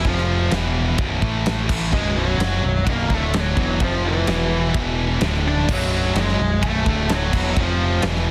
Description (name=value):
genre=quiet-loud alternative rock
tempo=128 BPM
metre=4/4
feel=straight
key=unclear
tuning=A4 = 440 Hz
part: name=octave-fuzz lead guitar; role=melody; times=0.0-8.0 s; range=E3 to D5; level=-27 LUFS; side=equal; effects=distortion, plate reverb, digital delay
part: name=string machine, cellos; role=sustained chords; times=0.0-8.3 s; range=none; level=barely audible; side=none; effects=none
part: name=distorted electric guitar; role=riff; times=0.0-8.3 s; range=B1 to A3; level=-31 LUFS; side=equal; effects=overdrive
part: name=distorted electric guitar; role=riff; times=0.0-8.3 s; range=B1 to A3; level=-32 LUFS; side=equal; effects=none
part: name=high-gain distorted guitar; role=riff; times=0.0-8.3 s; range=B1 to A3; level=-30 LUFS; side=equal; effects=distortion
part: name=growling picked electric bass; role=bass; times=0.0-8.3 s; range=B0 to A1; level=-25 LUFS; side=equal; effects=overdrive
part: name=big rock drum kit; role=drums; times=0.0-8.2 s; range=crash cymbal, kick drum, ride cymbal, snare drum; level=-26 LUFS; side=equal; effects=none
room=light reverb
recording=dense, heavily limited modern master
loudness=-20 LUFS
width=mono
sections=0.0-5.7 A section; 5.7-8.3 A section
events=none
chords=0.0 F5; 0.5 E5; 1.0 B; 1.2 A5; 1.7 B; 3.1 D5; 3.6 B; 3.8 F5; 4.3 E5; 5.2 D5; 5.7 B; 6.9 D5; 7.3 B; 7.6 F5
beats=| 0.05 0.52 0.98 1.45 | 1.92 2.39 2.86 3.33 | 3.80 4.27 4.74 5.21 | 5.68 6.15 6.62 7.09 | 7.56 8.03